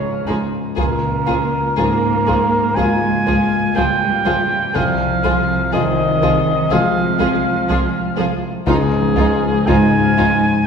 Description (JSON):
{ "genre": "cinematic, emotional film score for orchestra", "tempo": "61 BPM", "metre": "4/4", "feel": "rubato", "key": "unclear", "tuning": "A4 = 443 Hz", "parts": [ { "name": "mellow cor anglais", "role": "second line", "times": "0.0-10.7 s", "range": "Ab4 to Ab5", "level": "-19 LUFS", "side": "right 1 dB", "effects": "none" }, { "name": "warm concert grand piano", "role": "accompaniment", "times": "0.0-10.7 s", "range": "C2 to F5", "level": "-21 LUFS", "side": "left 2 dB", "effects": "none" }, { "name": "concert harp", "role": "arpeggios", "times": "0.0-10.7 s", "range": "C3 to F5", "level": "-25 LUFS", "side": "left 3 dB", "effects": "none" }, { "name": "warm studio cello section", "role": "bass", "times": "0.0-10.7 s", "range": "Ab2 to Bb3", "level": "-21 LUFS", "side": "right 1 dB", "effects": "none" }, { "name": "warm studio violin section", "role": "melody", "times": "0.3-10.3 s", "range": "F4 to Ab4", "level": "-28 LUFS", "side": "left 3 dB", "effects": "none" }, { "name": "warm studio violin section", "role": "second line", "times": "0.3-10.3 s", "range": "Eb4 to F4", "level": "-27 LUFS", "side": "left 3 dB", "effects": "none" }, { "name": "warm studio viola section", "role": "accompaniment", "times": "0.3-10.3 s", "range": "F3", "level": "-27 LUFS", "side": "right 3 dB", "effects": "none" }, { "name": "rich studio double bass section", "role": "bass", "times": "0.3-10.3 s", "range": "C2 to Db2", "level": "-25 LUFS", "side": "right 3 dB", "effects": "none" } ], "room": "wet scoring stage reverb, RT60 1.7 s", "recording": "heard from further back in the room", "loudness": "-14 LUFS", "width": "side -6 dB against mid", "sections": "0.0-10.7 A section", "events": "none", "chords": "0.0 Dbadd9; 0.8 Bbm7/Db; 4.8 Fm/C; 8.7 Dbadd9", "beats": "| 0.77 1.78 2.77 3.76 | 4.76 5.74 6.72 7.70 | 8.68 9.69" }